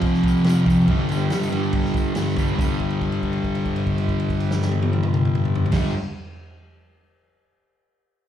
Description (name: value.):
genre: garage rock duo or trio.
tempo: 141 BPM.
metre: 4/4.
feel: straight.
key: unclear.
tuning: A4 = 439 Hz.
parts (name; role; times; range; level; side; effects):
fuzz guitar; riff; 0.0-5.9 s; F2 to G3; -20 LUFS; equal; distortion.
vintage drum kit; drums; 0.0-5.8 s; crash cymbal, kick drum, snare drum, toms; -24 LUFS; equal; none.
tambourine; percussion; 0.1-2.8 s; none; -46 LUFS; right 3 dB; none.
room: studio ambience.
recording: live gig heard through the venue's PA, club reverb.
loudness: -19 LUFS.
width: side -10 dB against mid.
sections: 0.0-2.6 A section; 2.6-6.0 B section.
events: held note 2.6-5.7.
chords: 0.0 F5; 0.9 G5.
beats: 0.04 0.47 | 0.89 1.32 1.74 2.17 | 2.59 3.02 3.45 3.87 | 4.30 4.72 5.15 5.57.